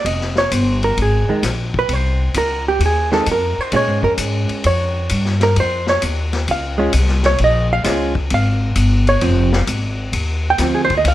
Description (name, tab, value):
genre	jazz, small-group swing and bop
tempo	131 BPM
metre	4/4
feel	swing 68% on 8ths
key	F minor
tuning	A4 = 440 Hz
part	hollow-body jazz guitar	accompaniment	0.0-11.1 s	Eb3 to G5	-17 LUFS	right 2 dB	none
part	upright bass	bass	0.0-11.1 s	F1 to Bb2	-18 LUFS	left 1 dB	none
part	vintage drum kit	drums	0.1-11.1 s	hi-hat, kick drum, ride cymbal, snare drum	-24 LUFS	left 3 dB	none
room	light reverb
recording	none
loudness	-14 LUFS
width	side -14 dB against mid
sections	0.0-11.1 A section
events	none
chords	0.1 Fm7; 3.7 Bbm7; 9.2 Fm7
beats	| 0.06 0.52 0.98 1.44 | 1.90 2.35 2.81 3.27 | 3.73 4.18 4.64 5.10 | 5.55 6.01 6.47 6.93 | 7.38 7.84 8.30 8.76 | 9.22 9.68 10.14 10.60 | 11.06